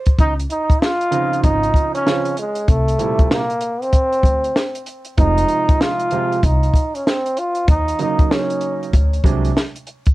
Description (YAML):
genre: hip hop, jazz-hop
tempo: 96 BPM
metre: 4/4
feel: swing 63% on 16ths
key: Db major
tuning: A4 = 440 Hz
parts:
  - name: dark grand piano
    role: accompaniment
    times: 0.0-9.5 s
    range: Bb2 to C5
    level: -23 LUFS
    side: right 6 dB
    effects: cassette tape
  - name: compact cocktail drum kit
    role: drums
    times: 0.1-10.1 s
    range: hi-hat, kick drum, snare drum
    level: -16 LUFS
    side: equal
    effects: cassette tape
  - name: clear trombone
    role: melody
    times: 0.2-8.9 s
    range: Ab3 to F4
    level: -20 LUFS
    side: equal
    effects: cassette tape, analog delay
  - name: upright bass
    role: bass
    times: 0.2-9.5 s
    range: F1 to Eb2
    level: -19 LUFS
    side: equal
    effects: none
room: light reverb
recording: home recording on cassette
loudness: -15 LUFS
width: side -18 dB against mid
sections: 0.2-10.1 A section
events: none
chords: 0.2 Dbmaj9; 2.7 C7; 5.2 Fm7; 7.7 Ebm7; 8.9 D7#11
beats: | 0.18 0.81 1.43 2.06 | 2.68 3.31 3.93 4.56 | 5.18 5.81 6.43 7.06 | 7.68 8.31 8.93 9.56